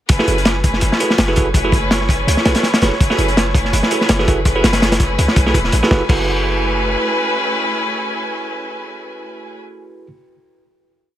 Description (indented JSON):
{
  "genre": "drum and bass, jungle",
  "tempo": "165 BPM",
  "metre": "4/4",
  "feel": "swing 54% on 16ths",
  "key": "F# minor",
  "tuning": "A4 = 441 Hz",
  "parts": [
    { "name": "rich chamber string section", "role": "sustained chords", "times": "0.1-9.6 s", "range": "A3 to G#5", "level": "-21 LUFS", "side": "left 1 dB", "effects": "none" },
    { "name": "warm 808-style bass", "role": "bass", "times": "0.1-7.0 s", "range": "E1 to C#2", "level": "-19 LUFS", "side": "equal", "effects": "tube saturation" },
    { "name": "crunchy breakbeat drum kit", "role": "drums", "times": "0.1-6.2 s", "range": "crash cymbal, hi-hat, kick drum, snare drum", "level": "-16 LUFS", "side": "equal", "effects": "none" },
    { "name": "wind-like tuned noise texture", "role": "texture", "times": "0.9-5.9 s", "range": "C#5 to C#6", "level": "-28 LUFS", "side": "right 3 dB", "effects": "built-in reverb" },
    { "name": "bell-like tine electric piano", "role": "stabs", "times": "0.2-10.1 s", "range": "E4 to B4", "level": "-23 LUFS", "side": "right 3 dB", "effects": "dub echo" }
  ],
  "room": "light reverb, studio reverb",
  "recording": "none",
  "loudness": "-13 LUFS",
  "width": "side -12 dB against mid",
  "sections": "0.1-5.9 drop; 5.9-8.8 final chord",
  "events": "drop 0.1-5.9",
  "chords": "0.1 F#m11"
}